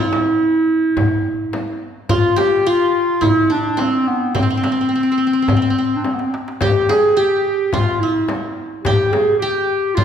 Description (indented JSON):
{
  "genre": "Turkish makam ensemble",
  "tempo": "107 BPM",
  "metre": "4/4",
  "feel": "straight",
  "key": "G makam hicaz",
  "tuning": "A4 = 440 Hz",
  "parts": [
    { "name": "mellow clarinet", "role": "melody", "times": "0.0-10.0 s", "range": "B3 to Ab4", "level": "-17 LUFS", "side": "equal", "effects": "none" },
    { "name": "qanun", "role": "second line", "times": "0.0-10.0 s", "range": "C4 to Ab4", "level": "-22 LUFS", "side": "equal", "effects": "none" },
    { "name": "darbuka", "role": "percussion", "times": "0.1-10.0 s", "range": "none", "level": "-24 LUFS", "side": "equal", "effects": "none" },
    { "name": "frame drum", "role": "percussion", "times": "0.1-10.0 s", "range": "none", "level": "-24 LUFS", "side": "left 3 dB", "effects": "none" }
  ],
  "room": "wet recital hall reverb, RT60 1.8 s",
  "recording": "recorded in a church or concert hall",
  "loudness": "-14 LUFS",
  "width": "side -8 dB against mid",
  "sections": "0.0-10.0 A section",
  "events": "drum fill 6.0-6.6",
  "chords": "none",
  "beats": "0.41 0.98 1.54 | 2.10 2.66 3.23 3.79 | 4.35 4.92 5.48 6.04 | 6.60 7.17 7.73 8.29 | 8.86 9.42 9.98"
}